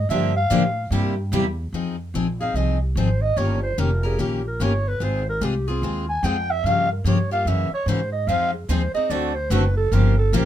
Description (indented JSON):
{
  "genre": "acoustic string swing (jazz manouche)",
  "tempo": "147 BPM",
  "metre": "4/4",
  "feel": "swing 62% on 8ths",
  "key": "F minor",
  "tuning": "A4 = 440 Hz",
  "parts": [
    { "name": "growling clarinet", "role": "melody", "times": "0.0-10.5 s", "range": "F4 to Ab5", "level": "-24 LUFS", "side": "right 1 dB", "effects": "none" },
    { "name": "upright bass", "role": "bass", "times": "0.0-10.5 s", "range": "F1 to A2", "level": "-22 LUFS", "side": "equal", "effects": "none" },
    { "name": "picked steel-string acoustic guitar", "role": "accompaniment", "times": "0.1-10.4 s", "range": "C3 to Bb4", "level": "-25 LUFS", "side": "left 4 dB", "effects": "none" },
    { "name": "picked steel-string acoustic guitar", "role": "accompaniment", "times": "0.1-1.4, 8.3-10.4 s", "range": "C3 to C5", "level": "-27 LUFS", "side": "right 3 dB", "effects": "none" }
  ],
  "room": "light reverb",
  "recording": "minimal, uncompressed stereo recording",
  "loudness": "-19 LUFS",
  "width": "side -11 dB against mid",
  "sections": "0.0-1.7 A section; 1.7-10.5 B section",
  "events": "clarinet solo 1.7-10.5",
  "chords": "0.1 Gm7; 0.9 C7; 1.7 Fm7; 3.4 Eb7; 5.0 Ab6; 6.6 Gm7b5; 7.5 Gb9; 8.3 Fm7; 9.1 D7; 9.9 Gm7b5",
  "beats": "| 0.09 0.50 0.91 1.32 | 1.73 2.14 2.55 2.96 | 3.37 3.78 4.19 4.60 | 5.01 5.42 5.83 6.24 | 6.64 7.05 7.46 7.87 | 8.28 8.69 9.10 9.51 | 9.92 10.33"
}